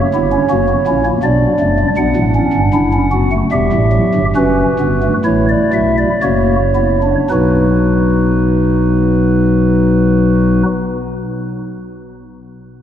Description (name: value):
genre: classical, baroque-style 4-part fugue for pipe organ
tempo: 53-82 BPM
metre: 3/4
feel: straight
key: unclear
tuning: A4 = 441 Hz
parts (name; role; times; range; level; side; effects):
- pipe organ, stopped flute; solo; 0.0-10.7 s; E1 to F#5; -11 LUFS; equal; none
room: wet cathedral reverb, RT60 4.6 s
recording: faint mains hum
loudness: -11 LUFS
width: side -10 dB against mid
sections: 0.0-7.3 A section; 7.3-10.7 B section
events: slowing down 0.9-7.3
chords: 0.0 F#7; 1.2 Bm; 2.0 G; 3.5 Em; 4.4 F#7sus4; 6.2 F#7; 7.3 B